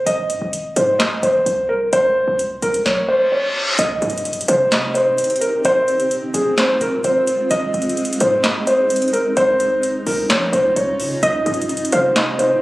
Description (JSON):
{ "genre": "hip hop, trap", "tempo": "129 BPM", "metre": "4/4", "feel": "half-time", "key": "C phrygian", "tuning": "A4 = 440 Hz", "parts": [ { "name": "felt-muted upright piano", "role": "melody", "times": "0.0-12.6 s", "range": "Ab4 to Eb5", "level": "-17 LUFS", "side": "equal", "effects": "low-pass filter, digital delay" }, { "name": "short 808-style bass", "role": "bass", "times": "0.0-12.6 s", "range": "Eb1 to F3", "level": "-27 LUFS", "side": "equal", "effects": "none" }, { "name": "booming analog drum machine", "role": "drums", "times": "0.1-12.5 s", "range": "handclaps, hi-hat, kick drum, snare drum", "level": "-22 LUFS", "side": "equal", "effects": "none" }, { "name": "reverse cymbal and impact", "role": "sound effects", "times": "3.1-5.6 s", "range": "none", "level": "-24 LUFS", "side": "left 1 dB", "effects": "none" }, { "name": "granular cloud pad", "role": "sustained chords", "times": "4.8-12.6 s", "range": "C3 to G4", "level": "-25 LUFS", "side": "equal", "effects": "built-in reverb" }, { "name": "warbly dusty pluck", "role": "second line", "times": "11.2-12.1 s", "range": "Eb5 to F5", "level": "-24 LUFS", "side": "equal", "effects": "chorus, digital delay" } ], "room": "light reverb, digital ambience", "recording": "recorded on a phone in the room, club reverb, compression", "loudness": "-15 LUFS", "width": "side -18 dB against mid", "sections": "0.0-3.8 A section; 3.8-12.6 B section", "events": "reverse cymbal 3.1-3.8; impact 3.8-5.6", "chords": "0.1 Ab; 1.9 Bbmadd9 (rootless); 3.8 Cm; 5.6 Fm; 7.5 Ab; 9.4 Dbadd9; 11.2 Cm" }